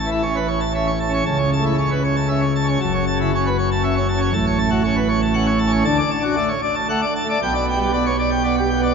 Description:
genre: classical, organ toccata.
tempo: 117 BPM.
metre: 3/4.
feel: straight.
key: unclear.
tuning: A4 = 441 Hz.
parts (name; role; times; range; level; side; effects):
pipe organ, plenum; solo; 0.0-8.9 s; F#1 to A5; -17 LUFS; equal; none.
room: wet cathedral reverb, RT60 5.3 s.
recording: nothing above 7.5 kHz.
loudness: -17 LUFS.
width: side -6 dB against mid.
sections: 0.0-8.9 A section.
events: none.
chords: 0.0 A; 1.3 A/C#; 2.8 F#m7; 4.3 F#m/A; 5.9 D; 7.4 G/B.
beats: 0.23 0.75 | 1.26 1.77 2.29 | 2.81 3.32 3.83 | 4.33 4.84 5.36 | 5.87 6.38 6.89 | 7.41 7.92 8.43.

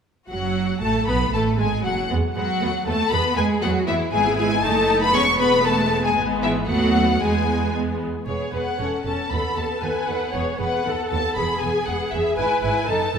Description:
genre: quick classical-period movement for string orchestra.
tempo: 117 BPM.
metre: 2/4.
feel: straight.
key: E major.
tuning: A4 = 443 Hz.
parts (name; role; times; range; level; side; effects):
rich studio violin section; melody; 0.3-13.2 s; E5 to C#6; -24 LUFS; left 4 dB; none.
rich studio violin section; second line; 0.3-13.2 s; B3 to C#5; -26 LUFS; left 2 dB; none.
clear studio viola section; accompaniment; 0.3-13.2 s; F#3 to C#5; -25 LUFS; right 1 dB; none.
bright studio cello section; bass; 0.3-13.2 s; D#2 to C#4; -28 LUFS; right 4 dB; none.
warm studio double bass section; bass; 0.3-13.2 s; E1 to E2; -28 LUFS; right 3 dB; none.
room: moderate concert hall reverb, RT60 2.0 s.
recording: minimal, uncompressed stereo recording.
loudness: -19 LUFS.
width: side -7 dB against mid.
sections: 0.0-8.3 A section; 8.3-13.2 A section.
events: none.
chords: 0.0 N.C.; 0.6 F#m; 1.1 B5; 2.1 E; 2.6 B7/D#; 3.1 E; 4.1 E/G#; 4.6 D#dim/F#; 5.1 E; 6.2 E/G#; 6.7 B7/D#; 7.2 E; 8.8 F#m7; 9.3 B7/D#; 10.3 E; 10.9 B7/D#; 11.4 E; 12.4 E/G#.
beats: | 0.04 0.56 | 1.07 1.58 | 2.09 2.60 | 3.11 3.62 | 4.12 4.63 | 5.14 5.65 | 6.16 6.69 | 7.22 7.74 | 8.27 8.80 | 9.31 9.83 | 10.34 10.86 | 11.37 11.88 | 12.38 12.89.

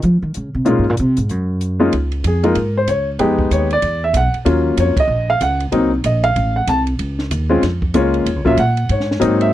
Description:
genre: jazz piano trio.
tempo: 190 BPM.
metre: 4/4.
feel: swing 62% on 8ths.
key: Db major.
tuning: A4 = 440 Hz.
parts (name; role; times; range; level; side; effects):
upright bass; bass; 0.0-9.5 s; A1 to F3; -18 LUFS; equal; none.
compact cocktail drum kit; drums; 0.0-9.5 s; hi-hat, kick drum, ride cymbal, snare drum; -25 LUFS; right 1 dB; none.
clear grand piano; melody; 0.6-9.5 s; Gb3 to A5; -16 LUFS; left 1 dB; none.
room: little or no reverb.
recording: dry, close 1970s-style studio recording.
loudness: -14 LUFS.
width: side -13 dB against mid.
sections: 0.0-1.9 A section; 1.9-9.5 B section.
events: upright bass solo 0.0-1.9; band accent 4.9.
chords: 0.0 Db69; 1.3 N.C.; 1.9 Db6; 3.2 Fm7b5; 3.8 E5; 4.5 Ebm9; 5.7 Cm7b5; 6.4 Am; 7.0 Bbm7; 8.3 Ebm7; 8.9 Ab7.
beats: 0.03 0.35 | 0.66 0.98 1.29 1.61 | 1.93 2.24 2.56 2.88 | 3.19 3.51 3.82 4.14 | 4.46 4.77 5.09 5.41 | 5.72 6.04 6.35 6.67 | 6.99 7.30 7.62 7.93 | 8.25 8.57 8.88 9.20 | 9.52.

